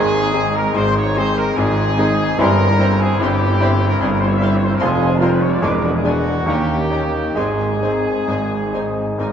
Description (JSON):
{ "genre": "classical, romantic movement for piano and orchestra", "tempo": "65-76 BPM", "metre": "3/4", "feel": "rubato", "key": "Ab major", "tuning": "A4 = 440 Hz", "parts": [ { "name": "clear baby grand piano", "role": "melody", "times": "0.0-9.3 s", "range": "E1 to D5", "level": "-19 LUFS", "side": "left 1 dB", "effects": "none" }, { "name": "large flute ensemble", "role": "second line", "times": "0.0-9.2 s", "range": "Gb5 to F6", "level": "-27 LUFS", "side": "left 2 dB", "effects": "none" }, { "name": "warm oboe", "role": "second line", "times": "0.0-9.3 s", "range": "Bb4 to D6", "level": "-30 LUFS", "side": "equal", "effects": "none" }, { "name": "warm bassoon", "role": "accompaniment", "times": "0.0-7.7 s", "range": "Eb3 to Bb3", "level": "-28 LUFS", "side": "right 2 dB", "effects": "none" }, { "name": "clear trombone section", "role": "sustained chords", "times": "0.0-9.3 s", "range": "Eb3 to Bb3", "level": "-28 LUFS", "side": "right 4 dB", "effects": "none" }, { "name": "mellow French horn section", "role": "sustained chords", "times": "0.0-9.3 s", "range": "C4 to G4", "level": "-27 LUFS", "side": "left 3 dB", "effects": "none" }, { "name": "clear trumpet section", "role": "stabs", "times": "0.0-9.2 s", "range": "Gb4 to F5", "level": "-23 LUFS", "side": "equal", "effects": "none" }, { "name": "mellow tuba", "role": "bass", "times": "0.0-9.3 s", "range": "E1 to Eb2", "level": "-25 LUFS", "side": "right 3 dB", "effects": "none" }, { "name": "muted symphonic cello section", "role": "bass", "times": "0.0-9.3 s", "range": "Eb2 to Ab2", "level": "-26 LUFS", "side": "right 2 dB", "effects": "none" }, { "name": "muted symphonic double bass section", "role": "bass", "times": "0.0-9.3 s", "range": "E1 to Eb2", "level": "-26 LUFS", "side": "right 4 dB", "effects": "none" }, { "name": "muted symphonic violin section", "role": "melody", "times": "0.3-9.3 s", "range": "Ab5 to C6", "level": "-36 LUFS", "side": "left 5 dB", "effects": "none" }, { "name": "muted symphonic violin section", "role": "second line", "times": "0.3-9.3 s", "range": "D4 to F4", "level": "-31 LUFS", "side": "left 3 dB", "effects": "none" }, { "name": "muted symphonic viola section", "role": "accompaniment", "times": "0.3-9.3 s", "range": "C4 to D4", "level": "-32 LUFS", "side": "right 1 dB", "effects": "none" }, { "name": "mellow clarinet", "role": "second line", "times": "0.8-9.3 s", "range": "G#3 to F4", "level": "-28 LUFS", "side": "left 2 dB", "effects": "none" } ], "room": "wet concert hall reverb, RT60 2.4 s", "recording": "nothing above 7.8 kHz", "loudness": "-15 LUFS", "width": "side -8 dB against mid", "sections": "0.0-9.3 A section", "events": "none", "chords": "0.0 Ab; 2.4 C/G; 4.8 Fm; 5.6 E7; 6.5 Eb7; 7.4 Ab", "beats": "0.74 1.56 | 2.38 3.19 4.01 | 4.81 5.62 6.46 | 7.36 8.28 9.18" }